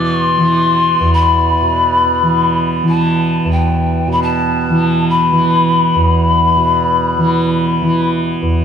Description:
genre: world meditative, free-time meditation music.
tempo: free time.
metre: none.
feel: none.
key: unclear.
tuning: A4 = 441 Hz.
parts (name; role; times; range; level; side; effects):
breathy mellow pan flute; melody; 0.0-8.1 s; G5 to C6; -14 LUFS; left 3 dB; tape echo.
tanpura; drone; 0.0-8.6 s; E2 to E3; -14 LUFS; right 1 dB; none.
crotales; texture; 0.0-8.0 s; A6; -32 LUFS; equal; none.
room: wet cathedral reverb, RT60 4.7 s.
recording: dark, warm production.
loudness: -11 LUFS.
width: side -8 dB against mid.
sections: 0.0-8.6 A section.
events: none.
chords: none.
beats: free time.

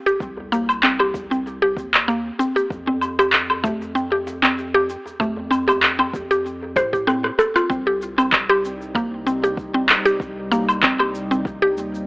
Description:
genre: organic downtempo.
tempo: 96 BPM.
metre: 4/4.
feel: swing 54% on 16ths.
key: C dorian.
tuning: A4 = 440 Hz.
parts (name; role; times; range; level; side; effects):
mallet-like synth pluck; arpeggios; 0.1-11.8 s; A3 to C5; -20 LUFS; equal; chorus, tape echo.
electronic shaker, woodblock, handclaps and rim click; drums; 0.1-12.1 s; none; -17 LUFS; equal; none.
djembe; percussion; 0.1-7.5 s; none; -37 LUFS; equal; none.
round analog bass; bass; 0.2-12.1 s; C2 to A2; -34 LUFS; equal; sidechain pumping.
electronic kick drum; drums; 0.2-11.6 s; none; -30 LUFS; equal; none.
warbly tape-like pad; sustained chords; 8.2-12.1 s; C3 to Eb4; -30 LUFS; equal; chorus, built-in reverb, sidechain pumping.
room: little or no reverb.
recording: dry, gritty hardware recording, AM radio sound.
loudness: -17 LUFS.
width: side -27 dB against mid.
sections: 0.0-7.7 A section; 7.7-12.1 B section.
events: drum fill 6.8-7.7.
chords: 0.0 Cm; 2.7 Fadd9; 7.7 Cm.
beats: | 0.20 0.83 1.45 2.08 | 2.70 3.33 3.95 4.58 | 5.20 5.83 6.45 7.08 | 7.70 8.33 8.95 9.58 | 10.20 10.83 11.45.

